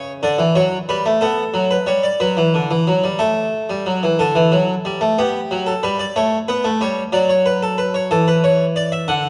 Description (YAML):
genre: classical, baroque-style two-part invention for harpsichord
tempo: 61 BPM (dotted quarters)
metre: 6/8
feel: straight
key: D major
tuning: A4 = 440 Hz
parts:
  - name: harpsichord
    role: solo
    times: 0.0-9.3 s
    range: C#3 to F#5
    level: -18 LUFS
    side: equal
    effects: none
room: moderate concert hall reverb, RT60 1.9 s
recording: worn, warbling old tape, cassette tape, warbly pitch drift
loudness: -18 LUFS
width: mono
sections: 0.0-4.2 A section; 4.2-9.3 B section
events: none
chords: 0.2 D; 1.2 F#madd11; 2.2 D; 3.2 A5; 4.2 D; 5.2 G; 6.2 A7; 7.1 D/F#; 8.1 A/E